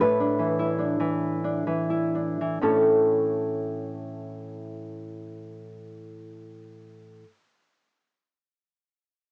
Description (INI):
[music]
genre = romantic piece for solo classical guitar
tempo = 39-55 BPM (dotted quarters)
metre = 6/8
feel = rubato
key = A major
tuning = A4 = 440 Hz
[part]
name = nylon-string guitar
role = solo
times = 0.0-7.3 s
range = A2 to B4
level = -27 LUFS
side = equal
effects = cassette tape
[sound]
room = light reverb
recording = home recording on cassette, small speaker sound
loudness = -25 LUFS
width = mono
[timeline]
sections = 0.0-2.6 A section; 2.6-7.8 B section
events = slowing down 0.0-2.6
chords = 0.0 E5/A; 2.6 A